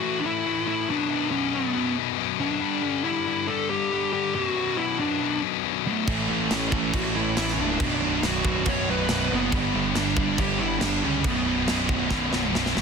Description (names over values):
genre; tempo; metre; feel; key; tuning
heavy metal; 139 BPM; 4/4; straight; B minor; A4 = 440 Hz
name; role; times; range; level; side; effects
dark smooth lead guitar; melody; 0.0-12.5 s; A3 to C#5; -28 LUFS; right 1 dB; overdrive, ping-pong delay
high-gain distorted guitar; riff; 0.0-12.8 s; B1 to A3; -27 LUFS; left 17 dB; distortion
scooped high-gain guitar; riff; 6.1-12.8 s; B1 to A3; -31 LUFS; right 1 dB; distortion
sludgy distorted guitar; riff; 6.1-12.8 s; B1 to A3; -29 LUFS; right 16 dB; overdrive
fuzz picked electric bass; bass; 6.1-12.8 s; B0 to C#2; -30 LUFS; equal; overdrive
tight metal drum kit; drums; 6.1-12.8 s; crash cymbal, kick drum, snare drum; -28 LUFS; right 1 dB; soft clipping on kick
room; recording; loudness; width
light reverb; dense, heavily limited modern master; -22 LUFS; side -5 dB against mid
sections
0.0-12.8 A section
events
drum fill 12.1-12.8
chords
0.0 A5; 0.9 Bm; 2.6 G5; 4.3 Bm; 6.1 A; 7.8 Bm; 9.5 G; 11.3 B5